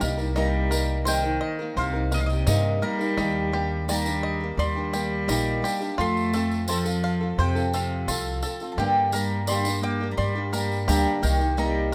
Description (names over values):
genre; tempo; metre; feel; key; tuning
indie folk with a building arrangement; 86 BPM; 4/4; straight; unclear; A4 = 445 Hz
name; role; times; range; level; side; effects
mandolin; melody; 0.0-11.9 s; Eb5 to D6; -32 LUFS; equal; none
warm cello; second line; 0.0-11.9 s; C3 to Bb3; -32 LUFS; equal; none
picked old ladder-braced acoustic guitar; accompaniment; 0.0-11.9 s; G2 to Bb4; -31 LUFS; equal; none
bluegrass banjo; arpeggios; 0.0-11.9 s; Eb4 to G5; -36 LUFS; equal; none
upright bass; bass; 0.0-11.9 s; Bb1 to G2; -29 LUFS; equal; none
tambourine; percussion; 0.0-11.7 s; none; -38 LUFS; equal; none
room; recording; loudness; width
light reverb, studio reverb; rough home demo mix; -25 LUFS; mono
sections
0.0-11.9 A section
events
none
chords
0.0 Cm7; 3.2 Ebmaj7; 6.0 F; 8.8 Gm; 11.2 Cm7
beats
| 0.36 1.07 1.77 2.47 | 3.18 3.88 4.58 5.29 | 5.99 6.69 7.39 8.09 | 8.79 9.49 10.19 10.89 | 11.59